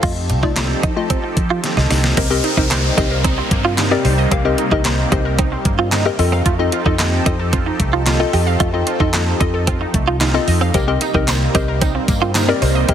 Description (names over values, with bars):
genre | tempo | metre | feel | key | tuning
dance-pop | 112 BPM | 4/4 | straight | C dorian | A4 = 440 Hz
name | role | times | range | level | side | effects
hollow square pluck | accompaniment | 0.0-12.9 s | A3 to F5 | -21 LUFS | left 6 dB | chorus, sidechain pumping
lush unison pad | sustained chords | 0.0-12.9 s | C3 to A4 | -24 LUFS | right 1 dB | chorus, phaser, sidechain pumping
direct-recorded clean electric guitar | riff | 0.0-12.9 s | C4 to G4 | -23 LUFS | right 6 dB | ensemble chorus
vintage muted fingered electric bass | bass | 0.0-12.9 s | C2 to F3 | -19 LUFS | equal | sidechain pumping
pop drum kit | drums | 0.0-12.9 s | crash cymbal, handclaps, hi-hat, kick drum, snare drum | -20 LUFS | equal | overdrive
glassy wavetable pluck | arpeggios | 2.2-12.9 s | A3 to F5 | -25 LUFS | right 3 dB | chorus, sidechain pumping, tape echo
downlifter | sound effects | 2.2-6.5 s | none | -26 LUFS | equal | none
tambourine | percussion | 10.7-12.7 s | none | -32 LUFS | right 3 dB | none
room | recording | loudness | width
light reverb | heavily compressed radio sound, multiband compression | -14 LUFS | side -9 dB against mid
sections
0.0-2.2 A section; 2.2-12.9 B section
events
drum fill 1.6-2.2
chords
0.0 F7; 2.2 Cm7; 6.2 F7; 10.7 Cm7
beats
| 0.03 0.56 1.10 1.64 | 2.17 2.71 3.24 3.78 | 4.32 4.85 5.39 5.92 | 6.46 6.99 7.53 8.06 | 8.60 9.14 9.67 10.21 | 10.74 11.28 11.81 12.35 | 12.89